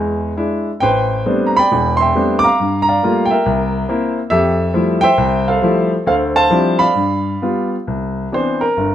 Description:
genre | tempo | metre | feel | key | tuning
solo jazz | 136 BPM | 4/4 | swing 68% on 8ths, rubato | C major | A4 = 441 Hz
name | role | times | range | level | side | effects
warm grand piano | solo | 0.0-8.9 s | E1 to D6 | -13 LUFS | equal | none
room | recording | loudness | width
moderate large studio reverb, RT60 1.0 s | minimal, uncompressed stereo recording | -13 LUFS | side -11 dB against mid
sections
0.0-7.9 A section; 7.9-8.9 B section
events
grand piano solo 7.9-8.9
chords
0.0 E7; 0.8 Am11; 2.6 Gm9; 3.5 C7; 4.3 Fmaj9; 6.1 Dm11; 7.0 G7; 7.9 Cmaj9

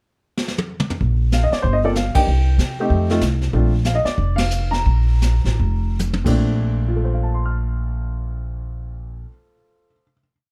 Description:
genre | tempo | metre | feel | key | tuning
jazz piano trio | 132-190 BPM | 4/4 | swing 62% on 8ths | Bb major | A4 = 438 Hz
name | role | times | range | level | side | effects
vintage brush drum kit | drums | 0.4-6.3 s | brushed snare drum, crash cymbal, hi-hat, kick drum, ride cymbal, snare drum, toms | -26 LUFS | equal | none
upright bass | bass | 1.0-9.2 s | F1 to C3 | -21 LUFS | equal | none
clear upright piano | melody | 1.3-10.4 s | Bb2 to F6 | -25 LUFS | equal | none
room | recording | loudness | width
light reverb | none | -20 LUFS | mono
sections
0.0-1.0 pickup bar; 1.0-6.4 A section; 6.4-10.1 final chord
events
drum fill 0.4-1.0, 6.0-6.4; band accent 2.1, 4.3; slowing down 3.5-6.4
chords
0.0 N.C.; 1.6 Gm11; 2.3 C5; 2.9 F9; 3.5 Bb; 6.4 Bbmaj9

